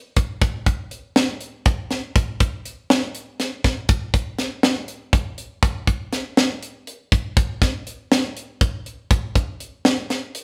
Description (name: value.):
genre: progressive instrumental, progressive.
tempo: 242 BPM (eighths).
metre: 7/8.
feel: straight.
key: none.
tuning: none.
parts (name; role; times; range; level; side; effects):
tight metal drum kit; drums; 0.2-10.4 s; hi-hat, kick drum, snare drum; -21 LUFS; equal; none.
room: moderate studio reverb, RT60 0.9 s.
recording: none.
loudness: -22 LUFS.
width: mono.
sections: 0.0-10.4 A section.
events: none.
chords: none.